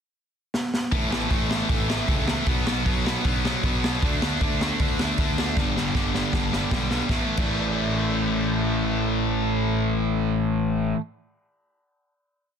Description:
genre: punk rock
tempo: 156 BPM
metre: 4/4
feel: straight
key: unclear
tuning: A4 = 439 Hz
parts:
  - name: raw garage drum kit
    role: drums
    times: 0.5-7.5 s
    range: crash cymbal, hi-hat, kick drum, snare drum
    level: -26 LUFS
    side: equal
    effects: none
  - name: cranked stack guitar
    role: riff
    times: 0.9-11.0 s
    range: G2 to D4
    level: -24 LUFS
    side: left 1 dB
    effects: overdrive
  - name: fuzz picked electric bass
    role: bass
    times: 0.9-10.9 s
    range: G1 to D2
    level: -28 LUFS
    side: equal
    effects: overdrive
room: little or no reverb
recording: dense, heavily limited modern master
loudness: -22 LUFS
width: side -7 dB against mid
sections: 0.0-0.9 pickup bar; 0.9-7.1 verse; 7.1-10.2 final chord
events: drum fill 0.5-0.9, 5.6-7.1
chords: 0.0 N.C.; 0.9 A; 2.5 B5; 4.0 D5; 5.6 G; 7.1 A5

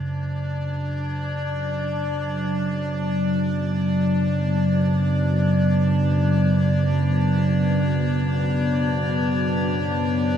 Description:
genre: dark ambient drone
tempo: free time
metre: none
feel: none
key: unclear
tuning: A4 = 440 Hz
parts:
  - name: deep dark ambient pad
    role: sustained chords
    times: 1.6-10.4 s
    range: F#3 to C#5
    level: -23 LUFS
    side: left 1 dB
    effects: chorus, built-in reverb, shimmer reverb
  - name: deep rumbling drone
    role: drone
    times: 0.0-10.4 s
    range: F#2 to C#3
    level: -23 LUFS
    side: right 1 dB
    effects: built-in reverb, phaser
  - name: metallic inharmonic drone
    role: texture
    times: 0.0-10.4 s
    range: D4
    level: -28 LUFS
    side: left 2 dB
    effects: chorus, built-in reverb, shimmer reverb
room: wet cathedral reverb, RT60 5.2 s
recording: none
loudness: -20 LUFS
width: side -9 dB against mid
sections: 0.0-10.4 A section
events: none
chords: 0.0 Bm/F#

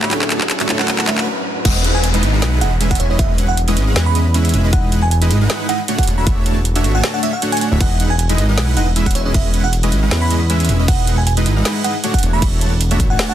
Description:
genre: future bass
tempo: 156 BPM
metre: 4/4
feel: swing 54% on 16ths, half-time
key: unclear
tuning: A4 = 440 Hz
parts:
  - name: bell-like FM electric piano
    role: melody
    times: 0.0-13.3 s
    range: C#5 to B5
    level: -24 LUFS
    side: right 2 dB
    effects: chorus, phaser, sidechain pumping, tape echo
  - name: dense compressed supersaw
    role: riff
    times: 0.0-13.3 s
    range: G#3 to A5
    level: -20 LUFS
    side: right 1 dB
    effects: sidechain pumping
  - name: trap drum kit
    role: drums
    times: 0.0-13.3 s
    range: crash cymbal, handclaps, hi-hat, snare drum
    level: -22 LUFS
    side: right 1 dB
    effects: none
  - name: riser, noise sweep and downlifter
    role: sound effects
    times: 0.0-4.7 s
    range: none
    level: -24 LUFS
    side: right 1 dB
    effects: none
  - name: felt-muted upright piano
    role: accompaniment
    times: 0.1-1.7 s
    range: F#3 to A4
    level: -27 LUFS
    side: left 3 dB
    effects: sidechain pumping, ping-pong delay
  - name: fat analog bass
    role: bass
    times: 1.7-13.2 s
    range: D1 to E2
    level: -16 LUFS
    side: equal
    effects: sidechain pumping
  - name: electronic kick drum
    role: drums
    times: 1.7-13.1 s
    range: none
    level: -17 LUFS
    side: equal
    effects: none
room: little or no reverb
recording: dense, heavily limited modern master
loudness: -13 LUFS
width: side -11 dB against mid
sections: 0.0-1.7 A section; 1.7-13.3 B section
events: build-up 0.0-1.7; drum fill 0.0-1.3; riser 0.0-1.3; noise sweep 0.1-1.7; stop 1.3-1.7; drop 1.7-13.3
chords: 0.0 Dmaj9; 1.7 C#m9/E; 4.7 Emaj7; 6.1 Dmaj9/E; 7.8 C#m9/E; 10.9 Emaj7; 12.2 Dmaj9/E

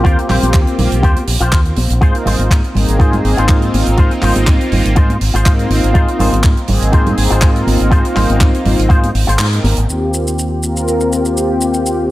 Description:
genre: nu-disco, nu disco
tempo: 122 BPM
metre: 4/4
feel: swing 54% on 16ths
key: unclear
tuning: A4 = 441 Hz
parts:
  - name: warm analog pad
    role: accompaniment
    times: 0.0-12.1 s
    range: Bb3 to C5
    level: -17 LUFS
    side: equal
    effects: chorus, tape echo
  - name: electric guitar with an envelope filter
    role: riff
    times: 0.0-9.7 s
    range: F4 to C5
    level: -21 LUFS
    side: left 1 dB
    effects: ensemble chorus, tape echo
  - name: fingered electric bass with an envelope filter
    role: bass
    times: 0.0-12.1 s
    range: Ab1 to Ab2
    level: -16 LUFS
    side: equal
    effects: tube saturation, sidechain pumping
  - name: electronic kick drum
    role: drums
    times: 0.0-9.0 s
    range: none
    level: -11 LUFS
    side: equal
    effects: none
  - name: tight funk drum kit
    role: drums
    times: 0.1-12.0 s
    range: handclaps, hi-hat, shaker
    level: -22 LUFS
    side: right 2 dB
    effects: none
  - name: congas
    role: percussion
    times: 0.3-9.7 s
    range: none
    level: -23 LUFS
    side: right 1 dB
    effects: none
  - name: clear studio string section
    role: sustained chords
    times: 9.9-12.1 s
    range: G4 to G5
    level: -26 LUFS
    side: equal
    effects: sidechain pumping, low-pass filter
room: light reverb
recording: none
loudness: -11 LUFS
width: side -16 dB against mid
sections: 0.0-9.9 A section; 9.9-12.1 B section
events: kick drops out 9.4-9.9; band accent 9.4; filter sweep on string section 9.9-12.1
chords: 0.0 Eb69; 2.0 Ab6; 9.9 Eb69

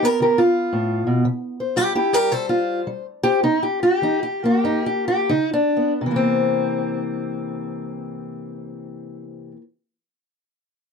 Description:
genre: acoustic country blues, solo or duo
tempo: 82-115 BPM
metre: 4/4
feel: swing 65% on 8ths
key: C mixolydian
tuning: A4 = 440 Hz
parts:
  - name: fingerpicked steel-string acoustic guitar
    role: solo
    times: 0.0-9.6 s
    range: G2 to C5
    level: -19 LUFS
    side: left 1 dB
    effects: none
room: light reverb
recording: close, detailed microphones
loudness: -18 LUFS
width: side -5 dB against mid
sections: 0.0-6.0 A section; 6.0-10.9 B section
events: slowing down 1.2-6.0; stop 1.2-5.3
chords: 0.0 G7 (rootless); 1.2 C7; 5.3 Bmadd9/C#; 6.0 C7

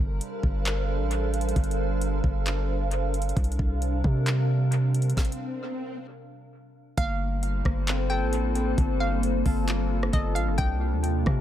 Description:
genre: hip hop, atmospheric cloud-rap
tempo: 133 BPM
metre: 4/4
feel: half-time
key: G minor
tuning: A4 = 435 Hz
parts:
  - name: glassy FM pad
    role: sustained chords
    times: 0.0-11.4 s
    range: C3 to F5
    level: -30 LUFS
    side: equal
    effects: ensemble chorus, built-in reverb, sidechain pumping
  - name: long sustained 808-style bass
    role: bass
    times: 0.0-11.4 s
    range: G1 to C3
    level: -26 LUFS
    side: equal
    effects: none
  - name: smooth R&B drum kit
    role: drums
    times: 0.2-11.4 s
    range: handclaps, hi-hat, kick drum, rim click, snare drum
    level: -28 LUFS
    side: equal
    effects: none
  - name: swell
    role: sound effects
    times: 4.7-6.1 s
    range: none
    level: -38 LUFS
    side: left 1 dB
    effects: none
  - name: hollow square pluck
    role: melody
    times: 7.0-11.4 s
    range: Eb5 to G5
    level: -34 LUFS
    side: equal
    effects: chorus, analog delay
  - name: Celtic harp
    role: arpeggios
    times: 7.0-11.4 s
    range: Bb3 to A4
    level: -34 LUFS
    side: left 3 dB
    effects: analog delay
room: little or no reverb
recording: echo-heavy mix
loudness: -24 LUFS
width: side -11 dB against mid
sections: 0.0-7.0 A section; 7.0-11.4 B section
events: swell 4.7-7.0; stop 5.2-7.0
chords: 0.0 Gm11; 3.4 C9sus4; 7.0 Gm11; 10.6 C9sus4

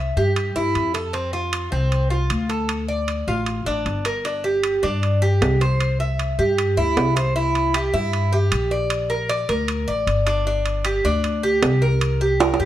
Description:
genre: latin, Cuban son and guajira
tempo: 154 BPM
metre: 4/4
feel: straight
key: unclear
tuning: A4 = 443 Hz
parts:
  - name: Cuban tres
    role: arpeggios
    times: 0.0-12.7 s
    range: C4 to E5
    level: -22 LUFS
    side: right 1 dB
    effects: none
  - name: upright bass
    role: bass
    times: 0.0-12.7 s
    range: G1 to G2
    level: -22 LUFS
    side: left 1 dB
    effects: none
  - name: timbales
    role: percussion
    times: 0.4-12.6 s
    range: none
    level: -24 LUFS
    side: right 4 dB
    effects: none
room: light reverb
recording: dark, warm production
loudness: -18 LUFS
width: side -12 dB against mid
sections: 0.0-7.4 A section; 7.4-12.7 B section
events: drum fill 12.4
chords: 0.0 C (rootless); 1.1 F; 2.7 Dm; 4.2 G5; 5.8 C; 8.9 Bb; 10.5 G5; 12.0 C7(no3)

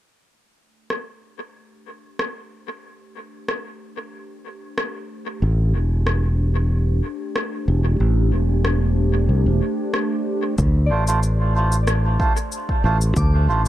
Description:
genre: ambient dub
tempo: 93 BPM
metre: 4/4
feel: straight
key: unclear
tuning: A4 = 440 Hz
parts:
  - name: warbly tape-like pad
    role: sustained chords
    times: 0.3-13.7 s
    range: A3 to C5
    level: -28 LUFS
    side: right 1 dB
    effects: chorus, built-in reverb
  - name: electronic rim click and shaker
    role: drums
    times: 0.9-13.7 s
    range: none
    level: -28 LUFS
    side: left 1 dB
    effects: overdrive, dub echo
  - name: fingered electric bass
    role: bass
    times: 5.4-13.7 s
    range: E1 to D2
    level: -18 LUFS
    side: equal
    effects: tube saturation
  - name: electronic kick drum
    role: drums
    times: 10.6-13.3 s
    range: none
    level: -22 LUFS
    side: equal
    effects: none
  - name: soft synth bell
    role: arpeggios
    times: 10.9-13.7 s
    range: D5 to D6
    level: -32 LUFS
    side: left 4 dB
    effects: chorus, analog delay
  - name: melodica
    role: stabs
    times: 10.9-13.7 s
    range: A3 to C5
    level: -24 LUFS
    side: right 4 dB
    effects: low-pass filter, dub echo
room: digital ambience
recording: echo-heavy mix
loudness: -18 LUFS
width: side -14 dB against mid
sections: 0.3-10.6 A section; 10.6-13.7 B section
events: filter sweep on ambient pad 0.3-10.6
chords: 0.3 D5; 5.4 Am7; 10.6 Dm7

